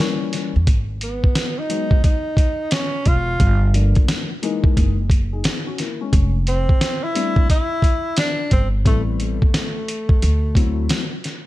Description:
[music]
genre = hip hop, jazz-hop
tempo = 88 BPM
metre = 4/4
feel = swing 64% on 16ths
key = unclear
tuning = A4 = 440 Hz
[part]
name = breathy tenor saxophone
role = melody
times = 0.0-11.2 s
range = A3 to F4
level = -24 LUFS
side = equal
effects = none
[part]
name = dark baby grand piano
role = accompaniment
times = 0.0-11.0 s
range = E3 to G#4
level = -26 LUFS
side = left 6 dB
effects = none
[part]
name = dusty soul sampler-style drum kit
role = drums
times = 0.3-11.4 s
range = hi-hat, kick drum, snare drum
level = -18 LUFS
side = equal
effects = none
[part]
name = upright bass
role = bass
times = 0.6-10.9 s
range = E1 to E2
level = -19 LUFS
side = equal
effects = none
[sound]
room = studio ambience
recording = none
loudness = -16 LUFS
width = side -16 dB against mid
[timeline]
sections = 0.0-11.5 A section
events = none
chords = 0.0 D#7b9 (rootless); 0.7 G#m7; 3.4 Gm9; 4.8 F#13; 6.1 F6; 8.9 Am7; 10.2 D9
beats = | 0.67 1.36 2.04 2.72 | 3.40 4.08 4.76 5.45 | 6.13 6.81 7.49 8.17 | 8.86 9.54 10.22 10.90

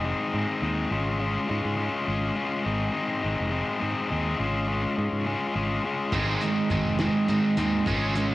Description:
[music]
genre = indie rock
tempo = 69 BPM (dotted quarters)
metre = 6/8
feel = straight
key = Ab major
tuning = A4 = 440 Hz
[part]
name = thick fuzz guitar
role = riff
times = 0.0-8.3 s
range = Ab3 to Ab4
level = -26 LUFS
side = left 2 dB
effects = distortion, cassette tape
[part]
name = fingered electric bass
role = bass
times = 0.0-8.3 s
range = F1 to Ab2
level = -30 LUFS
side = right 1 dB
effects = none
[part]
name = scooped high-gain guitar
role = riff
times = 6.1-8.3 s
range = Eb3 to F4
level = -25 LUFS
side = right 4 dB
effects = distortion, analog chorus, cassette tape, analog delay
[part]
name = cloth-damped thuddy drum kit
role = drums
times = 6.1-8.3 s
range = hi-hat, kick drum, snare drum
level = -34 LUFS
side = equal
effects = cassette tape
[sound]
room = light reverb, studio reverb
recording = home recording on cassette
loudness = -24 LUFS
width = side -17 dB against mid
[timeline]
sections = 0.0-8.3 A section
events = none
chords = 0.0 Ab; 0.9 Db/Ab; 2.7 Ab; 4.4 Db/Ab; 6.1 Ab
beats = 0.05 | 0.92 1.78 | 2.65 3.52 | 4.39 5.26 | 6.13 7.00 | 7.87

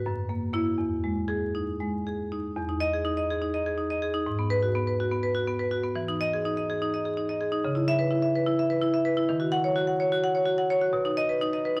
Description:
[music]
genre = classical, contemporary piece for solo marimba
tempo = 249 BPM (eighths)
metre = 7/8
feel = rubato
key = E major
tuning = A4 = 440 Hz
[part]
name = marimba with medium hard mallets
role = solo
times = 0.0-11.8 s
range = E2 to F#5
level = -27 LUFS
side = equal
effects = none
[sound]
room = wet stone room reverb, RT60 1.1 s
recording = vinyl crackle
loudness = -27 LUFS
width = mono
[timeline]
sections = 0.0-2.6 A section; 2.6-11.8 B section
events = none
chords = 0.1 F#7; 0.8 Emaj7; 4.3 G#m7; 6.0 Emaj7; 7.6 C#m7; 9.3 D#m7; 10.9 B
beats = 0.06 0.30 0.54 | 0.79 1.04 1.29 1.55 1.80 2.06 2.31 | 2.56 2.81 3.06 3.30 3.54 3.79 4.03 | 4.27 4.51 4.76 5.00 5.24 5.48 5.72 | 5.96 6.21 6.45 6.69 6.92 7.16 7.40 | 7.63 7.87 8.11 8.34 8.58 8.82 9.05 | 9.29 9.52 9.76 10.00 10.23 10.47 10.70 | 10.94 11.18 11.42 11.66

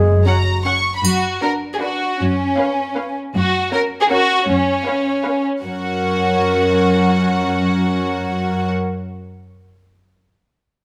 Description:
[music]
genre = cinematic, playful, whimsical film cue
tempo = 156 BPM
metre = 3/4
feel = straight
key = F# major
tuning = A4 = 439 Hz
[part]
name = dark clarinet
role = second line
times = 0.0-0.7 s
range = F#4 to G#4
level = -24 LUFS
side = equal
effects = none
[part]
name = mellow French horn section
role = sustained chords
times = 0.0-0.7 s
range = F#3 to G#3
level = -28 LUFS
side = equal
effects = none
[part]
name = warm studio cello section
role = bass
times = 0.0-8.7 s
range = F#2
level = -23 LUFS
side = equal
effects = none
[part]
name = warm studio violin section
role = melody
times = 0.3-8.7 s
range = E#5 to C#6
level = -27 LUFS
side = equal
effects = none
[part]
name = rich studio violin section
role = second line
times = 0.3-8.7 s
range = C#4 to F#5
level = -22 LUFS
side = equal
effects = none
[part]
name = rich studio viola section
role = accompaniment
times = 0.3-8.7 s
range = C#4 to B4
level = -24 LUFS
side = equal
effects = none
[part]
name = triangle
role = percussion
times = 1.0-1.8 s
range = none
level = -28 LUFS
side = equal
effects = none
[sound]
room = moderate recital hall reverb, RT60 1.6 s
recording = close, detailed microphones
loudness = -18 LUFS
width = mono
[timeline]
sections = 0.0-1.0 A section; 1.0-5.6 B section; 5.6-7.9 C section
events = none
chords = 0.0 F#; 1.0 Bm/F#; 2.2 C#7/F#; 3.3 F#; 4.5 C#7/F#; 5.6 F#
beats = 0.26 0.65 | 1.04 1.43 1.81 | 2.19 2.58 2.96 | 3.34 3.72 4.10 | 4.48 4.87 5.25 | 5.64 6.02 6.40 | 6.79 7.17 7.56

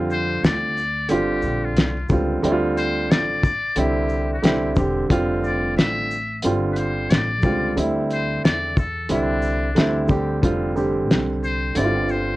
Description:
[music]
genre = hip hop, jazz-hop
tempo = 90 BPM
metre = 4/4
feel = swing 64% on 16ths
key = unclear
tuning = A4 = 440 Hz
[part]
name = warm grand piano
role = accompaniment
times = 0.0-12.4 s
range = D3 to G4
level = -22 LUFS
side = right 2 dB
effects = none
[part]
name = upright bass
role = bass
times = 0.0-12.4 s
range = E1 to F2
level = -26 LUFS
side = left 1 dB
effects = none
[part]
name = trumpet with metal mute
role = melody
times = 0.1-12.4 s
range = D4 to E5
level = -25 LUFS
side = left 2 dB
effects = none
[part]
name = cloth-damped thuddy drum kit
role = drums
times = 0.1-12.3 s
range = hi-hat, kick drum, shaker, snare drum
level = -20 LUFS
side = left 1 dB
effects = none
[sound]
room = light reverb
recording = worn, warbling old tape, cassette tape, warbly pitch drift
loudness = -18 LUFS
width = side -18 dB against mid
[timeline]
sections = 0.0-10.4 A section; 10.4-12.4 B section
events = muted trumpet solo 10.4-12.4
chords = 0.0 Fsus2; 1.1 Gm7; 2.4 Dm7; 3.8 Cadd9; 5.1 F69; 6.4 Gsus2; 7.8 Dsus2; 9.1 Cadd9; 9.8 D9sus4; 10.4 Fsus2; 11.8 G5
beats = 0.43 1.10 1.77 | 2.44 3.10 3.77 4.43 | 5.10 5.77 6.43 7.10 | 7.77 8.44 9.10 9.77 | 10.44 11.10 11.77

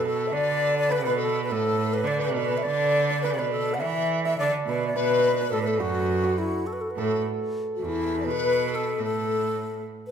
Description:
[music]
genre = chinese traditional, Chinese chamber ensemble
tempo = 104 BPM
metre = 2/4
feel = rubato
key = A zhi mode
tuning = A4 = 438 Hz
[part]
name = xiao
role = melody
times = 0.0-10.1 s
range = E4 to F#5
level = -27 LUFS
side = left 1 dB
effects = none
[part]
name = bright cello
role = second line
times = 0.0-9.9 s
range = E2 to E3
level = -28 LUFS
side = right 5 dB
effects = none
[part]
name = hammered dulcimer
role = second line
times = 0.0-9.9 s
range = F#4 to E5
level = -30 LUFS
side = right 4 dB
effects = none
[part]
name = mellow hollow large dizi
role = second line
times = 0.0-9.8 s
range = E4 to F#5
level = -29 LUFS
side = left 9 dB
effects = none
[sound]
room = moderate recital hall reverb, RT60 1.7 s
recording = minimal, uncompressed stereo recording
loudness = -23 LUFS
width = side -8 dB against mid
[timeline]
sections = 0.0-7.8 A section; 7.8-10.1 B section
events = none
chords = none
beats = 0.35 | 0.92 1.49 | 2.06 2.64 | 3.22 3.81 | 4.39 4.96 | 5.52 6.08 | 6.66 7.24 | 7.83 8.42 | 9.00 9.57

